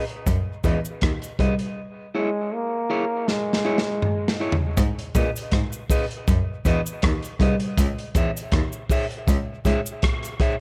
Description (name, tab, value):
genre	dub reggae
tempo	80 BPM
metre	4/4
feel	swing 55% on 16ths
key	G# minor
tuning	A4 = 440 Hz
part	electric guitar at the edge of break-up	accompaniment	0.0-10.5 s	E4 to E5	-31 LUFS	equal	low-pass filter, dub echo
part	crunchy breakbeat drum kit	drums	0.1-10.6 s	hi-hat, kick drum, rim click, snare drum, toms	-26 LUFS	equal	none
part	rich cello	bass	0.3-9.7 s	B#1 to A#2	-27 LUFS	equal	none
part	cabasa	percussion	0.3-10.4 s	none	-40 LUFS	equal	none
part	clear trombone	melody	2.2-4.4 s	G#3 to A#3	-29 LUFS	equal	low-pass filter, dub echo
room	light reverb, studio ambience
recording	echo-heavy mix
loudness	-24 LUFS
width	mono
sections	0.0-4.8 A section; 4.8-10.6 B section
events	break 0.0-1.8; drum fill 3.3-4.8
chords	0.0 G#m; 1.8 C#m; 4.8 G#m; 7.8 C#m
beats	0.27 1.02 | 1.77 2.52 3.27 4.02 | 4.77 5.53 6.28 7.03 | 7.78 8.53 9.28 10.03